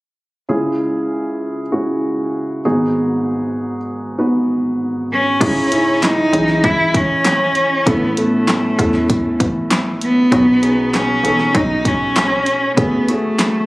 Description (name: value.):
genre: piano-driven pop.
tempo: 98 BPM.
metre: 4/4.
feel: straight.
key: C# minor.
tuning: A4 = 440 Hz.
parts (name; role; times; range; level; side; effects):
dark baby grand piano; accompaniment; 0.5-13.7 s; G#1 to D#5; -18 LUFS; equal; none.
warm cello; melody; 5.1-13.7 s; A3 to E4; -16 LUFS; equal; none.
hollow knocking FM bass; bass; 5.4-13.7 s; F#1 to E2; -25 LUFS; equal; none.
pop drum kit; drums; 5.4-13.5 s; crash cymbal, handclaps, hi-hat, kick drum, snare drum; -19 LUFS; equal; none.
room: light reverb, digital ambience.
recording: recorded on a phone in the room, club reverb.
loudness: -14 LUFS.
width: side -19 dB against mid.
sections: 0.5-5.4 A section; 5.4-13.7 B section.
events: none.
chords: 0.5 C#m; 2.6 G#m7; 5.4 C#madd9; 7.9 Aadd9; 10.3 Badd9; 12.8 F#madd9.